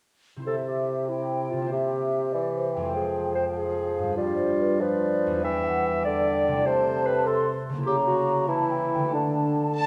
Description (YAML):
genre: classical, dramatic, fast romantic movement for symphony orchestra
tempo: 97 BPM (dotted quarters)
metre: 6/8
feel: rubato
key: C major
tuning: A4 = 443 Hz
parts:
  - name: concert harp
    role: arpeggios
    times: 0.4-9.9 s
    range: E2 to C5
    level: -35 LUFS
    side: equal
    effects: none
  - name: dark clarinet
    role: second line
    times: 0.5-9.8 s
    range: D4 to E5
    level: -30 LUFS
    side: equal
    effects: none
  - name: mellow hollow large flute ensemble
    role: second line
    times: 0.5-9.9 s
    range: B4 to C6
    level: -33 LUFS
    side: equal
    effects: none
  - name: mellow bassoon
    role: accompaniment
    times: 0.5-9.9 s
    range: C3 to G3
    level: -30 LUFS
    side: equal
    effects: none
  - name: warm symphonic violin section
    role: melody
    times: 9.8-9.9 s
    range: A5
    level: -37 LUFS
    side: equal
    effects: none
  - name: warm symphonic violin section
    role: second line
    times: 9.8-9.9 s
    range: A5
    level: -27 LUFS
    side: equal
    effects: none
room: wet concert hall reverb, RT60 2.2 s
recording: dark, warm production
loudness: -25 LUFS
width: mono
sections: 0.5-9.9 A section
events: none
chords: 0.5 C; 1.7 C7; 2.9 Fm; 4.2 G; 5.5 Em; 6.7 Am/C; 7.9 C#dim7; 9.1 D